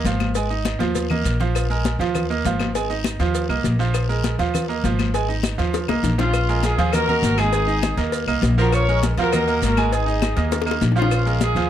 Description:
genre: latin, salsa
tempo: 201 BPM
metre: 4/4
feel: straight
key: unclear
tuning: A4 = 441 Hz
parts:
  - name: bright grand piano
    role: accompaniment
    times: 0.0-11.7 s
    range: F3 to Ab5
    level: -24 LUFS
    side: right 7 dB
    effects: none
  - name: upright bass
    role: bass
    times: 0.0-11.7 s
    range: Ab1 to Eb2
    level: -22 LUFS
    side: equal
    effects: none
  - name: congas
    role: percussion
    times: 0.1-11.7 s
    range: none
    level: -26 LUFS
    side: left 4 dB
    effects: none
  - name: cowbell and bongos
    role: percussion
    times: 0.1-11.7 s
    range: none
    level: -30 LUFS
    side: left 11 dB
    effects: none
  - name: guiro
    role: percussion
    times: 0.1-11.7 s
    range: none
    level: -35 LUFS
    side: left 12 dB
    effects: none
  - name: maracas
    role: percussion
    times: 0.1-11.7 s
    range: none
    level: -36 LUFS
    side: right 13 dB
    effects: none
  - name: claves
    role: percussion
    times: 0.2-11.3 s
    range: none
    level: -33 LUFS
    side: left 15 dB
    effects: none
  - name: mellow horn section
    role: melody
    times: 6.2-11.7 s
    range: Db4 to Db5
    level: -22 LUFS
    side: left 1 dB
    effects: none
room: small room ambience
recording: dry, close 1970s-style studio recording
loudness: -18 LUFS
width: side -10 dB against mid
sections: 0.0-6.3 A section; 6.3-11.7 B section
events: drum fill 0.8-1.6, 5.7-6.3, 10.5-11.1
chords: 0.4 Ab5; 1.0 Ebsus2; 1.6 Bb5; 2.1 Ebsus2; 2.7 Ab5; 3.3 Ebsus2; 3.9 Bb5; 4.5 Ebsus2; 5.1 Ab5; 5.7 Ebsus2; 6.3 Bbm7; 6.9 Ebm; 8.1 Ebmadd9; 8.7 Bbm7; 9.3 Ebm; 10.5 Ebsus2; 11.1 Bbm7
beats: 0.06 | 0.36 0.66 0.95 1.25 | 1.55 1.85 2.15 2.45 | 2.75 3.05 3.35 3.64 | 3.94 4.24 4.54 4.84 | 5.14 5.44 5.74 6.04 | 6.34 6.64 6.93 7.23 | 7.53 7.83 8.13 8.43 | 8.73 9.03 9.32 9.62 | 9.92 10.22 10.52 10.82 | 11.12 11.41

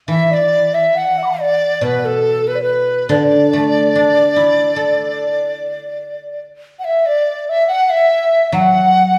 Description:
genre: chinese traditional, Chinese chamber ensemble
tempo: 71 BPM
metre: 4/4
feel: rubato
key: D gong mode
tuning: A4 = 440 Hz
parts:
  - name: mellow xiao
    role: melody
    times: 0.1-9.2 s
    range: A4 to D6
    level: -18 LUFS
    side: equal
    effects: none
  - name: mellow large dizi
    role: second line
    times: 0.1-9.2 s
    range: A4 to F#5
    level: -20 LUFS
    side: equal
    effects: none
  - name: guzheng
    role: accompaniment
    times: 0.1-9.2 s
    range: B2 to A4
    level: -20 LUFS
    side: equal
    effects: none
room: wet recital hall reverb, RT60 1.3 s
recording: heard from further back in the room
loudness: -15 LUFS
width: mono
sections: 0.1-9.2 A section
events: none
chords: none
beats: | 0.10 0.96 1.83 2.68 | 3.52 4.36 5.19 6.02 | 6.85 7.69 8.53

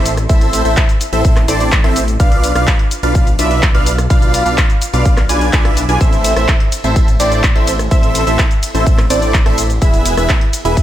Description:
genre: EDM, festival progressive house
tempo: 126 BPM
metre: 4/4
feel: straight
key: A harmonic minor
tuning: A4 = 439 Hz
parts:
  - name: wide unison lead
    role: arpeggios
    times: 0.0-10.8 s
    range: D5 to G#5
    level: -20 LUFS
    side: right 1 dB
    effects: sidechain pumping, digital delay
  - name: big supersaw lead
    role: riff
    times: 0.0-10.8 s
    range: B3 to G#5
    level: -18 LUFS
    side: right 1 dB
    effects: phaser, sidechain pumping, digital delay
  - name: wide detuned saw bass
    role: bass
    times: 0.0-10.8 s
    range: E1 to B1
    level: -17 LUFS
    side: equal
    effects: chorus, sidechain pumping
  - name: big-room dance drum kit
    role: drums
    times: 0.1-10.8 s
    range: cabasa, handclaps, hi-hat, ride cymbal, rim click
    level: -20 LUFS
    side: left 1 dB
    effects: small room ambience
  - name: electronic kick drum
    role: drums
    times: 0.3-10.8 s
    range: none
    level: -12 LUFS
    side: equal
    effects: small room ambience
room: digital ambience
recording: none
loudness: -10 LUFS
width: side -12 dB against mid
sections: 0.0-10.8 A section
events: none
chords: 0.0 Am; 2.2 Bdim; 6.0 Am; 9.8 E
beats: | 0.29 0.77 1.25 1.72 | 2.20 2.67 3.15 3.63 | 4.10 4.58 5.05 5.53 | 6.01 6.48 6.96 7.44 | 7.91 8.39 8.87 9.34 | 9.82 10.29 10.77

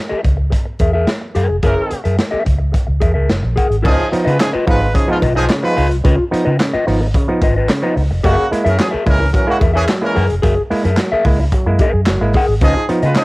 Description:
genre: funk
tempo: 109 BPM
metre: 4/4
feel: straight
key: unclear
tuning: A4 = 444 Hz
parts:
  - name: mellow electric guitar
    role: accompaniment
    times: 0.1-13.2 s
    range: F4 to Gb5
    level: -19 LUFS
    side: left 2 dB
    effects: phaser
  - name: vintage muted fingered electric bass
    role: bass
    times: 0.1-13.1 s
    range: F1 to Db3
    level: -16 LUFS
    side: equal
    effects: none
  - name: crunchy breakbeat drum kit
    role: drums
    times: 0.2-13.2 s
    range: crash cymbal, handclaps, hi-hat, kick drum, snare drum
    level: -18 LUFS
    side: equal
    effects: none
  - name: warm horn section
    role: second line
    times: 1.6-13.2 s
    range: Cb3 to Cb5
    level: -18 LUFS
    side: right 1 dB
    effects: none
  - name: auto-wah clav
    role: stabs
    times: 3.8-13.2 s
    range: Db3 to Fb4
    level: -20 LUFS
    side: right 1 dB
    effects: none
room: small room ambience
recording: home recording on cassette, vinyl crackle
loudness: -13 LUFS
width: side -22 dB against mid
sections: 0.0-3.8 A section; 3.8-13.2 B section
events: band accent 1.6-3.8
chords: 0.0 Gb9; 3.8 Db9; 8.2 Gb9; 12.6 Db9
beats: 0.53 1.08 | 1.63 2.19 2.74 3.29 | 3.84 4.39 4.94 5.49 | 6.04 6.59 7.14 7.69 | 8.24 8.78 9.33 9.88 | 10.43 10.97 11.52 12.06 | 12.61 13.16

